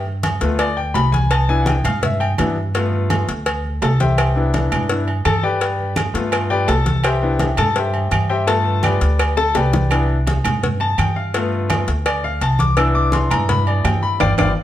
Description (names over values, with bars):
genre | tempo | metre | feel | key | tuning
latin, salsa | 168 BPM | 4/4 | straight | C major | A4 = 439 Hz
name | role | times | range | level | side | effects
bright baby grand piano | accompaniment | 0.0-14.5 s | A3 to E6 | -20 LUFS | left 4 dB | none
upright bass | bass | 0.0-14.5 s | G1 to G2 | -19 LUFS | equal | none
congas | percussion | 0.1-14.5 s | none | -25 LUFS | equal | none
agogo bells and timbales | percussion | 0.2-14.5 s | none | -25 LUFS | right 4 dB | none
cowbell and bongos | percussion | 0.2-14.5 s | none | -26 LUFS | left 3 dB | none
claves | percussion | 4.2-14.5 s | none | -30 LUFS | right 7 dB | none
room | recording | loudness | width
moderate large studio reverb, RT60 1.0 s | none | -15 LUFS | side -12 dB against mid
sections
0.0-14.6 A section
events
grand piano solo 0.0-14.6; drum fill 9.4-9.9; band accent 14.2-14.6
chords
0.0 G7; 1.3 Cmaj7; 2.7 G7; 4.2 Cmaj7; 5.6 G7; 7.0 Cmaj7; 8.5 G7; 9.9 Cmaj7; 11.3 G7; 12.8 Cmaj7